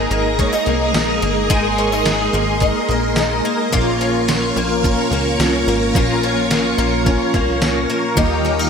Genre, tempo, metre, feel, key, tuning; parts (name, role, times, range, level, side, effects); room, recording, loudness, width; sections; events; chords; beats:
dream pop; 108 BPM; 4/4; straight; Bb dorian; A4 = 442 Hz
mellow electric guitar; accompaniment; 0.0-8.7 s; Bb2 to Bb4; -22 LUFS; right 2 dB; tremolo, lush chorus
string machine, full ensemble; sustained chords; 0.0-8.7 s; Ab4 to Eb6; -21 LUFS; right 1 dB; ensemble chorus
picked twelve-string acoustic guitar; arpeggios; 0.0-8.7 s; Bb2 to Ab4; -20 LUFS; left 3 dB; ensemble chorus, ping-pong delay
plucky analog bass; bass; 0.0-8.7 s; G1 to Eb2; -23 LUFS; equal
detuned 8-bit digital drum machine; drums; 0.1-8.6 s; hi-hat, kick drum, snare drum, tambourine; -22 LUFS; equal; gated reverb
wet lush hall reverb, RT60 1.9 s, digital ambience; bright 1980s-style digital production; -15 LUFS; side -6 dB against mid
0.0-8.7 A section
0.0 Absus2; 3.7 Bbm; 8.2 Ebadd9
0.39 0.95 | 1.50 2.06 2.62 3.17 | 3.73 4.28 4.84 5.39 | 5.95 6.50 7.06 7.62 | 8.17